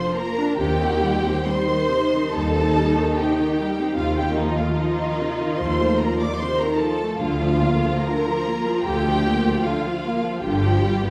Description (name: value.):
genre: classical, slow romantic movement for string orchestra.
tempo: 73 BPM.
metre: 4/4.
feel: uneven beats, rubato.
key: Bb major.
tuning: A4 = 439 Hz.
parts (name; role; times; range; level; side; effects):
warm studio violin section; melody; 0.0-11.1 s; Eb5 to D6; -31 LUFS; equal; none.
rich studio violin section; second line; 0.0-11.1 s; Eb4 to D5; -28 LUFS; equal; none.
rich studio viola section; accompaniment; 0.0-11.1 s; C3 to F4; -26 LUFS; equal; none.
clear studio double bass section; bass; 0.6-11.1 s; G1 to Eb2; -30 LUFS; equal; none.
rich studio cello section; bass; 0.6-11.1 s; D2 to G2; -29 LUFS; equal; none.
room: wet recital hall reverb, RT60 1.3 s.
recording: heard from further back in the room.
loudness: -21 LUFS.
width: mono.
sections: 0.0-11.1 A section.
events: none.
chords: 0.0 Bb; 0.6 Cm/Eb; 4.0 F7/Eb; 7.2 Bb/D; 10.4 G7(no3).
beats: | 0.59 1.47 2.33 3.15 | 3.96 4.77 5.58 6.39 | 7.19 8.05 8.86 9.64 | 10.42.